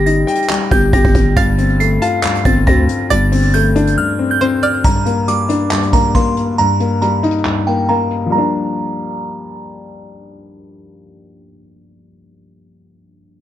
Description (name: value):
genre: hip hop, trap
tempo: 138 BPM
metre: 4/4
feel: half-time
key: G minor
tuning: A4 = 441 Hz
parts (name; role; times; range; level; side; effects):
- glassy synth bell; melody; 0.0-9.6 s; G5 to C7; -19 LUFS; right 3 dB; chorus, tape echo
- string-like resonator pluck; second line; 0.0-4.8 s; C5 to A5; -23 LUFS; right 4 dB; chorus, tape echo
- dark grand piano; accompaniment; 0.0-13.4 s; G2 to G5; -16 LUFS; left 3 dB; none
- growling 808-style bass; bass; 0.0-4.0 s; G1 to D2; -15 LUFS; equal; none
- soft brush drum kit; drums; 0.1-8.2 s; handclaps, hi-hat, kick drum; -18 LUFS; equal; none
room: small room ambience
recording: vinyl crackle, low-pass filter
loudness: -12 LUFS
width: side -12 dB against mid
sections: 0.0-4.8 A section; 4.8-8.3 B section; 8.3-11.8 C section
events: drums muted 4.0-4.8; kick muted 7.5-8.3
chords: 0.0 Eb/G; 1.4 F/G; 3.1 D5/G; 4.8 Gm; 6.6 Eb/G; 8.3 Gm7